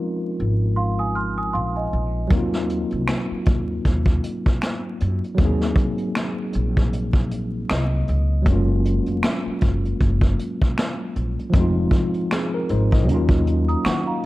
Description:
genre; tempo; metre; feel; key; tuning
lo-fi hip hop; 78 BPM; 4/4; swing 57% on 16ths; Eb dorian; A4 = 443 Hz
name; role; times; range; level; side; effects
tine electric piano; accompaniment; 0.0-14.3 s; F3 to Eb5; -24 LUFS; left 1 dB; medium stereo tremolo
upright bass; bass; 0.4-14.2 s; F1 to Eb3; -22 LUFS; equal; none
worn celesta; second line; 0.8-2.3, 13.7-14.3 s; Eb5 to F6; -26 LUFS; right 2 dB; tape echo
vintage brush drum kit; drums; 2.3-14.3 s; finger snaps, hi-hat, kick drum, snare drum; -21 LUFS; equal; vintage 12-bit sampler grit
room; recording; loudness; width
little or no reverb; dark, warm production, vinyl crackle; -19 LUFS; side -18 dB against mid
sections
0.0-14.3 A section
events
tine electric piano fill 7.3-8.5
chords
0.0 Fm7; 2.3 Ebm69; 8.5 Gbmaj9; 11.5 Fm7; 13.1 Ebm9

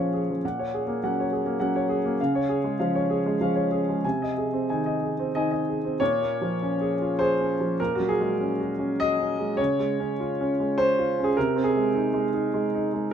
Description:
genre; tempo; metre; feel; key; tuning
neoclassical minimalist piano; 101 BPM; 3/4; rubato; unclear; A4 = 441 Hz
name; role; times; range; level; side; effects
warm grand piano; solo; 0.0-13.1 s; Bb2 to Ab5; -23 LUFS; equal; none
room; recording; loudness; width
light reverb; minimal, uncompressed stereo recording; -23 LUFS; side -8 dB against mid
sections
0.0-6.0 A section; 6.0-13.1 B section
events
none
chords
0.4 Gbadd9/Bb; 2.2 Db; 4.0 Ab/C; 6.0 Bbm7; 7.8 Gbadd9/Bb; 9.6 Db; 11.4 Ab/C

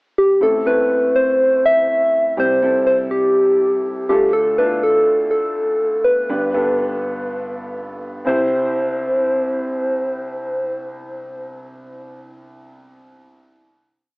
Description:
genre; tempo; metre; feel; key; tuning
pop; 122 BPM; 4/4; swing 56% on 16ths; C major; A4 = 439 Hz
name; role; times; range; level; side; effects
soft struck synth lead; melody; 0.2-12.3 s; G4 to E5; -16 LUFS; equal; chorus, cassette tape
warm baby grand piano; accompaniment; 0.4-14.2 s; G1 to C5; -24 LUFS; right 1 dB; cassette tape
room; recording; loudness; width
moderate spring reverb, RT60 2.1 s; home recording on cassette, AM radio sound; -15 LUFS; side -26 dB against mid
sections
0.0-0.4 pickup bar; 0.4-8.3 bridge; 8.3-12.2 final chord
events
none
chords
0.4 Am; 2.4 C; 4.1 Dm; 6.3 G; 8.3 C

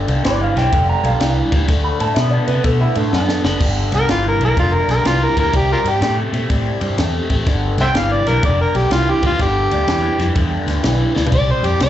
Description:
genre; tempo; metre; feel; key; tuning
electric blues shuffle; 125 BPM; 4/4; swing 66% on 8ths; G mixolydian; A4 = 440 Hz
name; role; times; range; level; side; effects
overdriven electric guitar; riff; 0.0-11.9 s; G2 to B3; -21 LUFS; left 1 dB; phaser, slapback echo
fingered electric bass; bass; 0.1-11.9 s; F1 to C3; -19 LUFS; equal; none
compact cocktail drum kit; drums; 0.1-11.9 s; crash cymbal, kick drum, ride cymbal, snare drum, toms; -21 LUFS; equal; none
electric guitar through a small old amp; second line; 0.3-3.6 s; D4 to B5; -21 LUFS; right 2 dB; analog chorus, slapback echo, analog delay
overdriven harmonica; melody; 4.0-11.9 s; F4 to G5; -18 LUFS; equal; slapback echo
room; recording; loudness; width
small room ambience; live gig heard through the venue's PA, club reverb, nothing above 8.0 kHz; -14 LUFS; side -12 dB against mid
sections
0.0-3.6 A section; 3.6-11.9 A section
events
clean electric guitar solo 0.0-3.6; drum fill 3.1-3.6, 11.1; harmonica solo 3.6-11.9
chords
0.0 G6; 1.7 D6; 3.6 G5; 5.5 C5; 7.5 G5; 11.3 C5

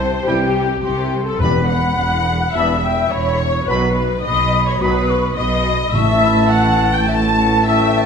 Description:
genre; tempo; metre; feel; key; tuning
cinematic, heroic adventure film score; 106 BPM; 4/4; straight; A mixolydian; A4 = 441 Hz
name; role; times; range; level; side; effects
rich symphonic violin section; melody; 0.0-8.1 s; G4 to A5; -28 LUFS; left 3 dB; none
concert flute; second line; 0.0-8.1 s; E5 to D#6; -25 LUFS; left 2 dB; none
warm symphonic violin section; second line; 0.0-8.1 s; G4 to A5; -26 LUFS; left 5 dB; none
rich symphonic viola section; accompaniment; 0.0-8.1 s; G4 to A5; -19 LUFS; left 3 dB; none
clear symphonic double bass section; bass; 0.0-8.1 s; E1 to C2; -22 LUFS; right 2 dB; none
rich symphonic cello section; bass; 0.0-8.1 s; E2 to C3; -22 LUFS; right 2 dB; none
clear trombone section; sustained chords; 0.3-8.1 s; D#3 to A3; -26 LUFS; right 3 dB; none
mellow French horn section; sustained chords; 0.3-8.1 s; B3 to F#4; -24 LUFS; left 4 dB; none
bright trumpet section; stabs; 0.3-8.1 s; G5 to B5; -24 LUFS; right 3 dB; none
timpani; percussion; 1.4-2.2, 5.9-6.8 s; E2 to A2; -23 LUFS; left 1 dB; none
room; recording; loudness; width
wet scoring stage reverb, RT60 1.5 s; none; -14 LUFS; side -6 dB against mid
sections
0.0-8.1 A section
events
none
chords
0.0 C; 1.4 Em; 3.7 B; 5.9 A

